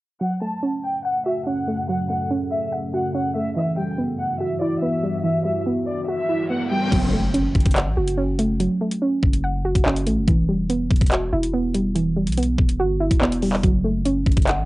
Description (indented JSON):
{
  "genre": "hip hop, drill",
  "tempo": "143 BPM",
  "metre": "4/4",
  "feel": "half-time",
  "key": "F# phrygian",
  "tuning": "A4 = 441 Hz",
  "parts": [
    { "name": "warm studio violin section", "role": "melody", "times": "0.2-6.9 s", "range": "D5 to A5", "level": "-26 LUFS", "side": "left 1 dB", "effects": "cassette tape, analog delay" },
    { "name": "soft round pluck", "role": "accompaniment", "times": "0.2-14.7 s", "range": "E3 to F#5", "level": "-22 LUFS", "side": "right 1 dB", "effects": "chorus" },
    { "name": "deep dark ambient pad", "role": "sustained chords", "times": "1.1-6.9 s", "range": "F#2 to F#4", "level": "-30 LUFS", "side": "left 1 dB", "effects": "chorus, built-in reverb" },
    { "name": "riser and impact", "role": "sound effects", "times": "5.9-8.6 s", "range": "none", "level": "-30 LUFS", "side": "equal", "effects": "none" },
    { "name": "long sustained 808-style bass", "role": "bass", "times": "6.9-14.7 s", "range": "D1 to B1", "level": "-24 LUFS", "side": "equal", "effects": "none" },
    { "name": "drill drum kit", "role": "drums", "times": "6.9-14.6 s", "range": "crash cymbal, handclaps, hi-hat, kick drum", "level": "-20 LUFS", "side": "equal", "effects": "cassette tape" }
  ],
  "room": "little or no reverb",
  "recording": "home recording on cassette, low-pass filter, nothing above 10.8 kHz",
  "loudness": "-19 LUFS",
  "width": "side -19 dB against mid",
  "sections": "0.2-6.9 A section; 6.9-14.7 B section",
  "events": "filter sweep 0.2-6.9; riser 5.9-6.9; impact 6.9-8.6",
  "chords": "0.2 F#m; 3.6 Emadd9; 6.9 F#m; 10.3 Emadd9; 13.6 F#m"
}